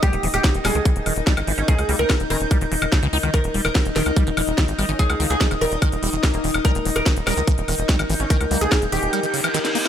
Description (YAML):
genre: psychedelic trance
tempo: 145 BPM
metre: 4/4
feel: straight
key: Eb major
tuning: A4 = 441 Hz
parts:
  - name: oud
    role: melody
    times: 0.0-9.9 s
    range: G4 to Bb4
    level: -26 LUFS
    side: right 1 dB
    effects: phaser, sidechain pumping, dub echo
  - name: evolving wavetable pad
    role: sustained chords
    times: 0.0-9.9 s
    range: Eb4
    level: -29 LUFS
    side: left 3 dB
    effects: phaser, built-in reverb, sidechain pumping
  - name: liquid acid bass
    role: riff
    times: 0.0-9.9 s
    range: Db3 to Eb4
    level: -28 LUFS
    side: moving between left 4 dB and right 4 dB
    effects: phaser, auto-pan, sidechain pumping, ping-pong delay
  - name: drum and bass drum kit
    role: drums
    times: 0.0-9.9 s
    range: hi-hat, snare drum, woodblock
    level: -25 LUFS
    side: left 1 dB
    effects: small room ambience
  - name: electronic kick drum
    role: drums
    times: 0.0-8.8 s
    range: none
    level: -18 LUFS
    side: equal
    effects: small room ambience
  - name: airy breathy pad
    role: texture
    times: 0.0-9.9 s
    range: Eb4 to G6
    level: -29 LUFS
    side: left 1 dB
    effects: chorus, sidechain pumping
  - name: tight sequencer bass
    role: bass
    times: 0.1-9.1 s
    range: Eb1 to Db2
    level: -25 LUFS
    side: equal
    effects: none
  - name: resonant blip pluck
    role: second line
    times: 1.6-9.2 s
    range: G3 to Db4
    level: -34 LUFS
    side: equal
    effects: phaser, sidechain pumping, high-pass filter, dub echo
  - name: reverse cymbal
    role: sound effects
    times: 9.3-9.9 s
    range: none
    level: -26 LUFS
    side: left 2 dB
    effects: none
room: little or no reverb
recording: none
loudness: -18 LUFS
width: side -10 dB against mid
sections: 0.0-9.9 A section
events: kick drops out 9.1-9.9; reverse cymbal 9.3-9.9; drum fill 9.5-9.9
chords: 0.0 Eb5